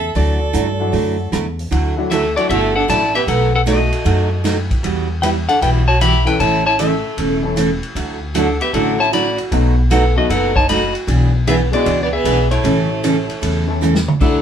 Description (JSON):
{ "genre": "country, western swing", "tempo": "154 BPM", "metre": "4/4", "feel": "swing 66% on 8ths", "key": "D major", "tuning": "A4 = 437 Hz", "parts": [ { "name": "clean lap steel guitar", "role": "melody", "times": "0.0-14.4 s", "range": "D4 to B5", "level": "-18 LUFS", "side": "left 3 dB", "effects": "none" }, { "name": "clear fiddle", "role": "second line", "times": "0.0-14.4 s", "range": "G#3 to A4", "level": "-23 LUFS", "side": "right 5 dB", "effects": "none" }, { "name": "upright bass", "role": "bass", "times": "0.0-14.4 s", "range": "E1 to G2", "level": "-19 LUFS", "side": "equal", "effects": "none" }, { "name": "vintage drum kit", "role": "drums", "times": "0.1-14.3 s", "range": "crash cymbal, hi-hat, kick drum, ride cymbal, rim click, snare drum, toms", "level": "-25 LUFS", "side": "equal", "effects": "none" }, { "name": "picked steel-string acoustic guitar", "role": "accompaniment", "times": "0.2-14.4 s", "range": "B2 to A4", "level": "-20 LUFS", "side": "right 4 dB", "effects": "none" }, { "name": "clear upright piano", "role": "accompaniment", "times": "0.8-2.5, 6.3-13.8 s", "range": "E3 to A4", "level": "-23 LUFS", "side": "left 4 dB", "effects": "none" } ], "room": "moderate studio reverb, RT60 0.7 s", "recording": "band playing live in one room", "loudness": "-14 LUFS", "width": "side -8 dB against mid", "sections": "0.0-1.7 A section; 1.7-14.2 B section", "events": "drum fill 13.8-14.2", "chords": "0.2 Dadd9; 3.3 B7; 4.8 Emadd9; 6.4 A; 8.0 Dadd9; 9.5 B7; 11.1 E7/B; 12.6 A" }